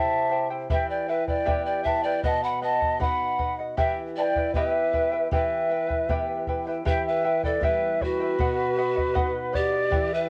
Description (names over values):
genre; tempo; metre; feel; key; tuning
andean folk, Andean ensemble; 78 BPM; 2/4; straight; E minor; A4 = 441 Hz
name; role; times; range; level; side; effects
mellow quena; melody; 0.0-10.3 s; B4 to B5; -29 LUFS; equal; cassette tape
breathy pan flute; second line; 0.0-10.3 s; F#4 to F#5; -30 LUFS; equal; cassette tape
charango; accompaniment; 0.0-10.3 s; E4 to G5; -33 LUFS; equal; cassette tape
flamenco guitar; accompaniment; 0.0-10.3 s; B2 to F#5; -37 LUFS; equal; cassette tape
bombo; percussion; 0.7-10.1 s; none; -32 LUFS; equal; none
room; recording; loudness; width
light reverb, studio reverb; home recording on cassette; -25 LUFS; mono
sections
0.0-6.9 A section; 6.9-10.3 A section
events
none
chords
0.0 C; 0.7 Em; 2.2 B; 3.8 Em; 8.4 B